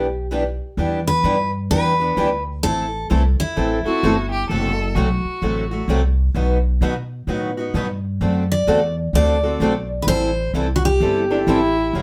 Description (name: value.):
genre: acoustic string swing (jazz manouche).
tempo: 129 BPM.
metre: 4/4.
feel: swing 63% on 8ths.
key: E minor.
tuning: A4 = 439 Hz.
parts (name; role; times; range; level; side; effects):
picked steel-string acoustic guitar; melody; 0.0-4.3, 8.5-11.7 s; E4 to D5; -24 LUFS; equal; none.
picked steel-string acoustic guitar; accompaniment; 0.0-12.0 s; B2 to A4; -25 LUFS; equal; none.
picked steel-string acoustic guitar; accompaniment; 0.0-12.0 s; B2 to B4; -29 LUFS; equal; none.
upright bass; bass; 0.0-12.0 s; F#1 to B2; -24 LUFS; equal; none.
rich violin; second line; 3.9-5.9, 11.3-12.0 s; D4 to A4; -25 LUFS; equal; none.
room: moderate studio reverb, RT60 0.5 s.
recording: band playing live in one room.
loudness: -20 LUFS.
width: mono.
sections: 0.8-12.0 A section.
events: none.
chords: 0.0 Em7; 2.6 Am; 4.5 F#dim; 6.3 B; 8.2 D7; 10.1 Am7.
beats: 0.30 | 0.77 1.23 1.70 2.17 | 2.63 3.10 3.56 4.03 | 4.49 4.96 5.42 5.89 | 6.35 6.82 7.28 7.75 | 8.21 8.68 9.14 9.61 | 10.07 10.54 11.01 11.47 | 11.94.